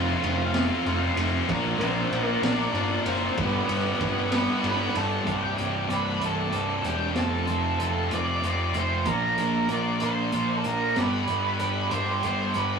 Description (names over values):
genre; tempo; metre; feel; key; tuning
quiet-loud alternative rock; 63 BPM (dotted quarters); 6/8; straight; unclear; A4 = 438 Hz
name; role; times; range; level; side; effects
octave-fuzz lead guitar; melody; 0.0-12.8 s; B3 to D5; -29 LUFS; right 2 dB; distortion
fuzz guitar; riff; 0.0-5.3 s; F2 to Bb4; -34 LUFS; right 7 dB; distortion
fuzz guitar; riff; 0.0-5.3 s; F2 to Bb3; -35 LUFS; right 1 dB; none
heavy high-gain guitar; riff; 0.0-12.8 s; C2 to Bb4; -29 LUFS; left 6 dB; distortion
fuzz picked electric bass; bass; 0.0-12.8 s; C1 to Bb1; -29 LUFS; equal; overdrive
raw garage drum kit; drums; 0.2-12.7 s; hi-hat, kick drum, ride cymbal, snare drum; -32 LUFS; equal; none
twelve-string electric guitar; arpeggios; 5.2-12.8 s; C2 to Bb4; -31 LUFS; right 6 dB; none
room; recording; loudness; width
light reverb; rough rehearsal-room recording, tube saturation, small room ambience; -23 LUFS; side -6 dB against mid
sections
0.0-5.3 A section; 5.3-12.8 B section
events
half time 5.3-12.8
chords
0.0 F; 1.5 Bbadd9; 3.4 G; 5.3 Cadd9; 7.2 F; 9.1 Bb; 11.0 G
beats
0.55 | 1.49 2.44 | 3.38 4.33 | 5.27 6.22 | 7.17 8.12 | 9.06 10.01 | 10.96 11.91